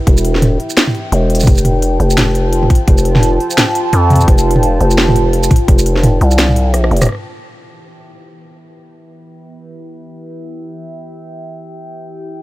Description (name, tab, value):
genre	half-time drum and bass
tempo	171 BPM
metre	4/4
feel	swing 58% on 16ths, half-time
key	E phrygian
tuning	A4 = 436 Hz
part	dark analog pad	sustained chords	0.0-12.4 s	E4 to A5	-20 LUFS	right 1 dB	chorus, phaser, vintage 12-bit sampler grit, sidechain pumping
part	growling 808-style bass	bass	0.1-7.1 s	E1 to F2	-12 LUFS	equal	tube saturation
part	drum and bass drum kit	drums	0.1-7.2 s	hi-hat, rim click, shaker, snare drum, toms	-15 LUFS	equal	none
part	electronic kick drum	drums	0.1-5.8 s	none	-10 LUFS	equal	none
room	little or no reverb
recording	none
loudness	-9 LUFS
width	side -17 dB against mid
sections	0.0-7.1 A section; 7.1-12.4 B section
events	drum fill 6.7-7.1; filter sweep on analog synth pad 7.1-12.4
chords	0.0 Em; 1.5 Fadd9; 7.1 Em